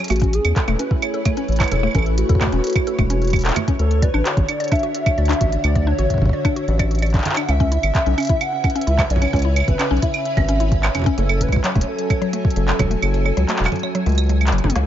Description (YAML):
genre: IDM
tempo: 130 BPM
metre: 4/4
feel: straight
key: A major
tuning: A4 = 440 Hz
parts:
  - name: soft string machine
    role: sustained chords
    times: 0.0-14.9 s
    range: C#3 to G#5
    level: -27 LUFS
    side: equal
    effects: ensemble chorus
  - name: mallet-like synth pluck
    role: arpeggios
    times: 0.0-14.8 s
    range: F#3 to D5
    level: -26 LUFS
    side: left 3 dB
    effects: chorus, analog delay
  - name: organic electronic drum kit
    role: drums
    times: 0.0-14.8 s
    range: claves, congas, handclaps, hi-hat, snare drum, toms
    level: -24 LUFS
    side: right 2 dB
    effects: overdrive, dub echo
  - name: warbly nostalgic lead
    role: melody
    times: 0.1-14.4 s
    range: F#4 to F#5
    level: -25 LUFS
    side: equal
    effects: ensemble chorus, cassette tape, tape echo
  - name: round analog bass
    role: bass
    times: 0.1-14.8 s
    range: E1 to E2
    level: -19 LUFS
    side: equal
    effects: none
  - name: electronic kick drum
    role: drums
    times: 0.2-12.9 s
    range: none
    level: -19 LUFS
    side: equal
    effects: overdrive
room: little or no reverb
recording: echo-heavy mix, nothing above 7.5 kHz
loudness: -16 LUFS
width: side -11 dB against mid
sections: 0.1-14.9 A section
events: kick drops out 13.0-14.9; drum fill 14.6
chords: 0.1 Amaj7; 3.8 Dmaj7; 7.5 C#m7; 11.2 F#m7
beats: | 0.10 0.56 1.02 1.49 | 1.95 2.41 2.87 3.33 | 3.79 4.25 4.72 5.18 | 5.64 6.10 6.56 7.02 | 7.49 7.95 8.41 8.87 | 9.33 9.79 10.26 10.72 | 11.18 11.64 12.10 12.56 | 13.02 13.49 13.95 14.41